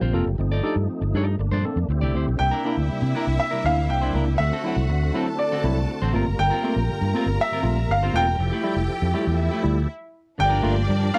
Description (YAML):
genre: disco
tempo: 120 BPM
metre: 4/4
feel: straight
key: G dorian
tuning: A4 = 440 Hz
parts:
  - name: bright grand piano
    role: melody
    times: 0.0-11.2 s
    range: D5 to G5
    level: -28 LUFS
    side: equal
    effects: none
  - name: barky tine electric piano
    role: accompaniment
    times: 0.0-11.2 s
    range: G2 to A4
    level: -31 LUFS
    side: equal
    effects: overdrive
  - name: clean electric guitar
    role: accompaniment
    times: 0.0-11.2 s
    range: A3 to D5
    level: -32 LUFS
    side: equal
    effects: none
  - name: tonewheel organ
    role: sustained chords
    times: 0.0-11.2 s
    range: C3 to Bb4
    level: -34 LUFS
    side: equal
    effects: chorus vibrato, fast rotary speaker
  - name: fingered electric bass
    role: bass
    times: 0.0-11.1 s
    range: E1 to C3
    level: -25 LUFS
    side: equal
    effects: none
  - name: clear studio string section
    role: second line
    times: 2.4-11.2 s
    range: D4 to Bb5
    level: -35 LUFS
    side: equal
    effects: none
room: little or no reverb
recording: dry, close 1970s-style studio recording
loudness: -23 LUFS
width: mono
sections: 0.0-2.4 A section; 2.4-10.4 B section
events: stop 9.9-10.4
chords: 0.4 F13/G; 1.4 Bbmaj9/G; 1.9 D9sus4; 2.4 C9; 4.4 D7; 6.1 Gm11; 8.4 Fmaj9; 10.4 Gm7